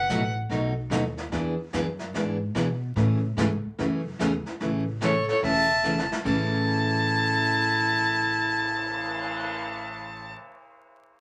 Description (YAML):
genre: country, western swing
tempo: 146 BPM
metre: 4/4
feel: swing 65% on 8ths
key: A major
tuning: A4 = 440 Hz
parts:
  - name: clear fiddle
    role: melody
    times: 0.0-0.3, 5.0-10.3 s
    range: C#5 to A5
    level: -28 LUFS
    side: equal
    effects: none
  - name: clear clarinet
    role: second line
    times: 0.0-0.3, 5.0-10.3 s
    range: E4 to E5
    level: -32 LUFS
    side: equal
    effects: none
  - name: upright bass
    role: bass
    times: 0.0-10.3 s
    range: E1 to B2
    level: -34 LUFS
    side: equal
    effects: none
  - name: picked steel-string acoustic guitar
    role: accompaniment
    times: 0.1-10.4 s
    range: A2 to G#4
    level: -31 LUFS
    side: equal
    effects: none
  - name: vintage brush drum kit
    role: drums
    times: 0.1-9.5 s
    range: brushed snare drum, crash cymbal, cymbal swell, hi-hat, kick drum, snare drum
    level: -37 LUFS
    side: equal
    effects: none
room: wet small room reverb, RT60 0.5 s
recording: vinyl crackle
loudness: -26 LUFS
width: mono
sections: 0.0-4.6 A section; 4.6-6.2 B section; 6.2-9.5 C section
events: drum fill 5.8-6.2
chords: 0.0 B7; 1.3 E7; 3.0 Amaj7; 6.2 A